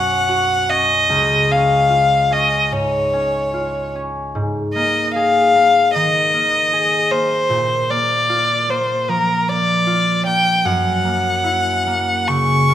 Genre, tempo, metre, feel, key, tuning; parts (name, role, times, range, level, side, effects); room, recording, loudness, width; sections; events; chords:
classical, impressionist duo for violin and harp; 75 BPM; 4/4; rubato; A4 = 440 Hz
rich violin; melody; 0.0-12.7 s; A#4 to C#6; -15 LUFS; left 2 dB
concert harp; accompaniment; 0.0-12.7 s; B1 to D#5; -21 LUFS; right 1 dB
moderate recital hall reverb, RT60 1.8 s; minimal, uncompressed stereo recording; -14 LUFS; side -10 dB against mid
0.0-12.7 A section
0.0 Badd9; 1.1 C#add9; 4.4 G#sus2; 7.5 A#7; 10.7 F#7